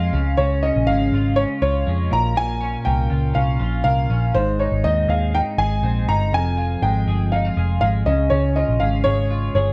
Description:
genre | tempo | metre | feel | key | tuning
jangly indie pop | 121 BPM | 4/4 | straight | unclear | A4 = 440 Hz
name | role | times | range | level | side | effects
warm upright piano | melody | 0.0-9.7 s | C5 to Bb5 | -24 LUFS | equal | slapback echo
twelve-string electric guitar | arpeggios | 0.0-9.7 s | F2 to Ab4 | -27 LUFS | equal | lush chorus
vintage muted picked electric bass | bass | 0.0-9.7 s | F1 to F2 | -23 LUFS | equal | none
room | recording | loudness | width
light reverb, studio reverb | dark, warm production | -20 LUFS | mono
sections
0.0-9.7 A section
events
none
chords
0.1 Db; 2.1 Bbm; 4.3 Ab; 6.3 Fm; 8.1 Db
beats
| 0.38 0.88 1.37 1.87 | 2.37 2.86 3.36 3.85 | 4.35 4.85 5.34 5.84 | 6.33 6.83 7.33 7.82 | 8.32 8.81 9.31

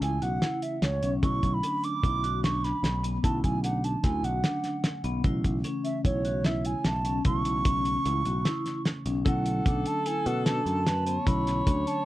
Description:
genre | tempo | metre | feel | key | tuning
progressive instrumental, band music in an uneven meter | 149 BPM | 5/4 | straight | B minor | A4 = 440 Hz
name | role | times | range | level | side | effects
baroque flute | melody | 0.0-12.1 s | C#5 to D6 | -31 LUFS | right 3 dB | digital delay
bell-like tine electric piano | accompaniment | 0.0-12.1 s | C#3 to C#4 | -35 LUFS | right 1 dB | none
vibraphone with medium hard mallets | arpeggios | 0.0-12.0 s | B3 to F#4 | -34 LUFS | left 2 dB | none
picked electric bass | bass | 0.0-11.8 s | B1 to B2 | -30 LUFS | equal | none
cloth-damped thuddy drum kit | drums | 0.0-12.0 s | hi-hat, kick drum, snare drum | -28 LUFS | equal | none
breathy alto saxophone | second line | 9.3-12.1 s | A4 to C#5 | -34 LUFS | left 4 dB | none
room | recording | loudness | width
little or no reverb | dark, warm production | -25 LUFS | side -16 dB against mid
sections
0.0-9.3 A section; 9.3-12.1 B section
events
none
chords
0.0 A/B; 1.2 Bm7; 5.2 A/B; 9.3 Bm7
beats
0.02 0.42 0.83 | 1.23 1.63 2.03 2.43 2.84 | 3.24 3.64 4.04 4.44 4.84 | 5.25 5.65 6.05 6.45 6.85 | 7.25 7.66 8.06 8.46 8.86 | 9.26 9.66 10.06 10.46 10.86 | 11.27 11.67

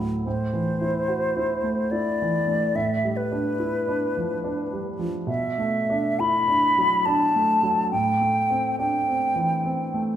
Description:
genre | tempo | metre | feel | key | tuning
classical, impressionist duo for flute and grand piano | 70 BPM | 3/4 | rubato | A dorian | A4 = 440 Hz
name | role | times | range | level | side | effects
warm grand piano | accompaniment | 0.0-10.2 s | D2 to F#4 | -26 LUFS | right 1 dB | none
mellow hollow silver concert flute | melody | 0.3-10.1 s | B4 to B5 | -23 LUFS | left 1 dB | none
room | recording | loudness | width
wet recital hall reverb, RT60 1.7 s | minimal, uncompressed stereo recording | -21 LUFS | side -10 dB against mid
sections
0.0-10.2 A section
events
none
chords
0.3 Am6; 2.8 G9/A; 5.3 Bm7; 7.9 Am7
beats
| 0.26 1.08 1.91 | 2.75 3.60 4.44 | 5.29 6.20 7.06 | 7.92 8.78 9.64

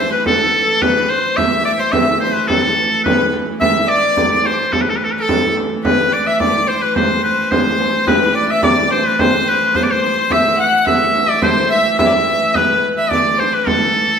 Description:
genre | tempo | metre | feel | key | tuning
medieval dance | 107 BPM | 2/4 | straight | A minor | A4 = 440 Hz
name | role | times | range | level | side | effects
bright shawm | melody | 0.0-14.2 s | A4 to F#5 | -15 LUFS | equal | none
bright fiddle | second line | 0.0-14.2 s | A4 to F#5 | -20 LUFS | left 3 dB | none
clear hurdy-gurdy | drone | 0.0-14.2 s | A2 to E3 | -24 LUFS | right 3 dB | none
frame drum | percussion | 0.3-14.1 s | none | -19 LUFS | right 1 dB | none
room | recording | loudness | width
wet stone room reverb, RT60 1.3 s | band playing live in one room | -12 LUFS | side -7 dB against mid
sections
0.0-5.8 A section; 5.8-14.2 B section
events
none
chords
none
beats
| 0.25 0.81 | 1.37 1.93 | 2.49 3.05 | 3.61 4.17 | 4.73 5.29 | 5.85 6.41 | 6.96 7.52 | 8.08 8.64 | 9.20 9.76 | 10.32 10.88 | 11.43 11.99 | 12.55 13.11 | 13.67

